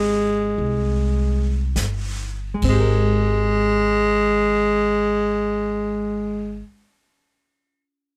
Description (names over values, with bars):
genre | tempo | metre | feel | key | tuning
jazz ballad | free time | none | none | Ab major | A4 = 438 Hz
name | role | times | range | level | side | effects
growling tenor saxophone | melody | 0.0-6.7 s | Ab3 | -22 LUFS | equal | none
hollow-body jazz guitar | accompaniment | 0.0-6.8 s | Ab3 to Bb4 | -30 LUFS | equal | none
upright bass | bass | 0.0-6.6 s | G1 to C2 | -26 LUFS | equal | none
jazz brush drum kit | drums | 0.6-2.8 s | brushed snare drum, hi-hat, kick drum, ride cymbal, snare drum | -34 LUFS | equal | none
room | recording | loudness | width
light reverb | none | -21 LUFS | mono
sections
0.0-3.0 A section; 3.0-8.2 B section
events
slowing down 0.0-3.0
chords
0.0 Abmaj9